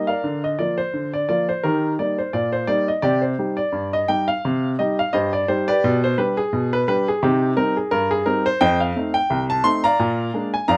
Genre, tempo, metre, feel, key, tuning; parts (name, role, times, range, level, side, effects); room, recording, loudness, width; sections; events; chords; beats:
ragtime piano; 86 BPM; 2/4; swing 55% on 16ths; A4 = 439 Hz
warm upright piano; solo; 0.0-10.8 s; C2 to C6; -21 LUFS; equal
little or no reverb; close, detailed microphones; -21 LUFS; mono
0.0-10.8 A section
0.2 Bb/D; 1.6 Eb; 3.0 Cm; 5.8 G/B; 7.2 Cm; 8.6 F7; 10.0 Bb7
| 0.24 0.94 | 1.64 2.34 | 3.03 3.73 | 4.43 5.12 | 5.82 6.52 | 7.21 7.91 | 8.60 9.29 | 9.99 10.69